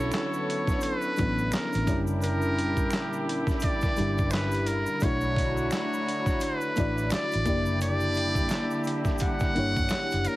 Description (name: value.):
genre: R&B, neo-soul.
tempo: 86 BPM.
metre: 4/4.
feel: swing 60% on 16ths.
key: B minor.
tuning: A4 = 441 Hz.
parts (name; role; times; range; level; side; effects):
trumpet with metal mute; melody; 0.0-10.4 s; A#4 to F#5; -31 LUFS; equal; none.
mellow FM electric piano; accompaniment; 0.0-10.4 s; F#3 to D5; -30 LUFS; left 1 dB; chorus.
warm studio string section; sustained chords; 0.0-10.4 s; A#2 to C#5; -37 LUFS; equal; none.
clear horn section; stabs; 0.0-10.2 s; F#3 to A4; -37 LUFS; right 1 dB; none.
vintage muted fingered electric bass; bass; 0.0-10.2 s; F#1 to B1; -30 LUFS; equal; none.
dusty soul sampler-style drum kit; drums; 0.1-10.4 s; handclaps, hi-hat, kick drum, snare drum; -30 LUFS; equal; none.
finger snaps and egg shaker; percussion; 0.1-10.4 s; none; -43 LUFS; right 4 dB; none.
room: light reverb, small room ambience.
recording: heavily compressed radio sound.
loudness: -24 LUFS.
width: side -17 dB against mid.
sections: 0.0-10.4 A section.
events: none.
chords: 0.0 Bm11; 1.9 F#7b9b13; 5.0 Bm11; 7.5 F#7b9b13.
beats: 0.13 0.83 1.52 | 2.22 2.92 3.62 4.31 | 5.01 5.71 6.41 7.11 | 7.80 8.50 9.20 9.89.